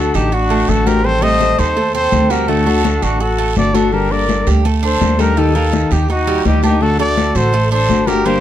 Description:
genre	latin, Cuban son and guajira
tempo	166 BPM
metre	4/4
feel	straight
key	unclear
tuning	A4 = 439 Hz
part	breathy trumpet	melody	0.0-8.4 s	F#4 to Eb5	-18 LUFS	equal	none
part	breathy bright jazz flute	second line	0.0-8.4 s	D4 to C5	-23 LUFS	left 4 dB	none
part	flamenco guitar	accompaniment	0.0-8.4 s	D3 to A4	-19 LUFS	left 5 dB	none
part	Cuban tres	arpeggios	0.0-8.4 s	G3 to A4	-21 LUFS	right 6 dB	none
part	upright bass	bass	0.0-8.4 s	G1 to Eb2	-17 LUFS	right 1 dB	none
part	congas	percussion	0.1-8.4 s	none	-21 LUFS	left 6 dB	none
part	guiro	percussion	0.1-8.4 s	none	-30 LUFS	right 7 dB	none
room	light reverb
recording	dark, warm production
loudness	-12 LUFS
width	side -11 dB against mid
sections	0.0-8.4 A section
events	none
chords	0.0 D; 1.0 Am7b5; 2.5 D; 3.9 Gmadd9; 5.4 Eb; 6.8 D

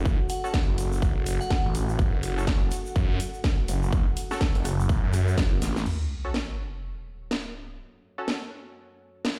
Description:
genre	bass house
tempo	124 BPM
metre	4/4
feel	swing 59% on 16ths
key	F# minor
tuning	A4 = 440 Hz
part	dark analog pad	sustained chords	0.0-9.4 s	F#3 to F#5	-41 LUFS	equal	chorus, sidechain pumping
part	phased detuned saw bass	bass	0.0-5.8 s	F#1 to F#2	-29 LUFS	equal	phaser, tube saturation, sidechain pumping
part	electronic kick drum	drums	0.1-5.5 s	none	-27 LUFS	equal	small room reverb
part	egg shaker	percussion	0.1-5.8 s	none	-46 LUFS	equal	none
part	glassy synth bell	melody	0.3-1.6 s	F#5	-38 LUFS	equal	chorus, phaser
part	garage drum kit	drums	0.3-9.4 s	crash cymbal, hi-hat, rim click, snare drum	-34 LUFS	equal	small room reverb
part	band-passed chord stab	stabs	0.4-8.4 s	C#4 to A4	-39 LUFS	equal	chorus, sidechain pumping, digital delay
part	sub drop	sound effects	5.9-7.8 s	none	-35 LUFS	equal	none
room	digital ambience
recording	played on a big sound system in a bare room, stone room reverb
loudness	-26 LUFS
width	mono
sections	0.0-5.9 A section; 5.9-9.4 B section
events	drum fill 5.6; impact 5.9-7.8; filter sweep on analog synth pad 5.9-9.4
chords	0.0 F#m

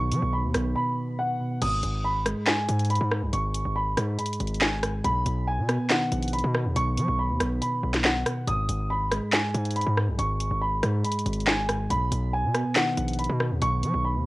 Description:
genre	hip hop, drill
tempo	140 BPM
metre	4/4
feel	half-time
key	G# minor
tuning	A4 = 440 Hz
part	dark concert grand piano	melody	0.0-14.3 s	F#5 to D#6	-29 LUFS	right 1 dB	cassette tape
part	soft electric-piano-like synth keys	accompaniment	0.0-14.3 s	G#2 to B3	-30 LUFS	equal	chorus, cassette tape
part	hard-hitting 808-style bass	bass	0.0-14.3 s	G#1 to F#3	-28 LUFS	equal	none
part	drill drum kit	drums	0.1-13.9 s	crash cymbal, handclaps, hi-hat, rim click, snare drum	-27 LUFS	equal	cassette tape
room	light reverb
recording	home recording on cassette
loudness	-23 LUFS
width	side -20 dB against mid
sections	0.0-1.6 A section; 1.6-14.3 A section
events	break 0.8-1.6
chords	0.0 B; 1.6 G#m; 5.0 B; 8.5 G#m; 11.9 B

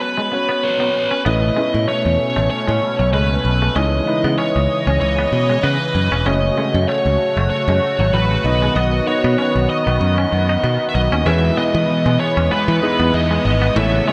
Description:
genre	pop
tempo	96 BPM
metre	4/4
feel	swing 55% on 16ths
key	E major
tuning	A4 = 440 Hz
part	bluesy overdriven lead guitar	melody	0.0-14.1 s	B4 to E5	-22 LUFS	equal	distortion, tape echo
part	warm concert grand piano	accompaniment	0.0-14.1 s	G#3 to D#5	-26 LUFS	equal	none
part	twangy electric guitar	riff	0.2-14.1 s	F#3 to D#4	-28 LUFS	equal	lush chorus, tape echo
part	sweeping resonant pad	sustained chords	1.3-14.1 s	B2 to D#5	-25 LUFS	equal	chorus
part	modern bright picked electric bass	bass	1.3-14.0 s	E1 to E3	-20 LUFS	equal	none
part	crunchy overdriven guitar	accompaniment	11.3-14.1 s	E2 to A3	-30 LUFS	equal	none
room	wet plate reverb, RT60 2.6 s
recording	dreamy mix soaked in reverb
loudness	-17 LUFS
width	mono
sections	0.0-1.3 A section; 1.3-11.3 B section; 11.3-14.1 C section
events	break 0.0-1.3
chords	0.0 Bsus2; 1.3 Aadd9; 3.8 C#madd9; 6.3 F#m; 8.4 B; 11.3 Emaj7

